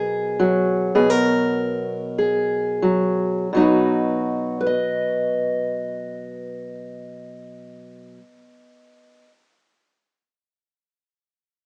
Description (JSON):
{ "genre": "folk", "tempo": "84-109 BPM", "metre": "4/4", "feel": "straight", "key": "B major", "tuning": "A4 = 440 Hz", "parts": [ { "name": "fingerpicked steel-string acoustic guitar", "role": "solo", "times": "0.0-9.3 s", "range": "B2 to D#5", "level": "-22 LUFS", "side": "equal", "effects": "none" } ], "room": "moderate large studio reverb, RT60 0.9 s", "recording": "band playing live in one room, small speaker sound", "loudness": "-21 LUFS", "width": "mono", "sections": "0.0-3.5 A section; 3.5-9.3 B section", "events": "slowing down 0.0-3.5", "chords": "0.0 F#add9/B; 3.5 B", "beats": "0.39 | 0.96 1.55 2.17 2.83 | 3.52 4.24 4.96 5.68 | 6.40 7.11 7.83 8.55" }